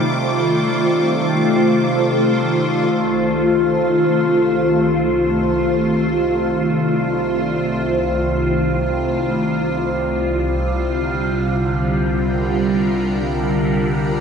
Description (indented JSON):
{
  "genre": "ambient",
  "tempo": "free time",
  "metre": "none",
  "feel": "none",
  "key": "unclear",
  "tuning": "A4 = 440 Hz",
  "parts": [
    { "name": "evolving wavetable pad", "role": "sustained chords", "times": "0.0-14.2 s", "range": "C2 to C5", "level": "-16 LUFS", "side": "equal", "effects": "ensemble chorus, built-in reverb, phaser" },
    { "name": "overtone-sweeping drone", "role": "drone", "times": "0.0-14.2 s", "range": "C3 to G3", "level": "-26 LUFS", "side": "right 1 dB", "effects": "chorus, built-in reverb, phaser" },
    { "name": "rich chamber violin section", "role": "texture", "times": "0.0-2.9 s", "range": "D6", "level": "-28 LUFS", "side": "left 1 dB", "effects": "none" }
  ],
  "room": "wet lush hall reverb, RT60 2.8 s",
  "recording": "dark, warm production",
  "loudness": "-16 LUFS",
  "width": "side -6 dB against mid",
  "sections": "0.0-2.9 A section; 2.9-14.2 B section",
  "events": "fade-in on synth drone 2.9-14.2",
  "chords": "0.0 F7; 9.9 Gm7/C",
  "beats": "free time"
}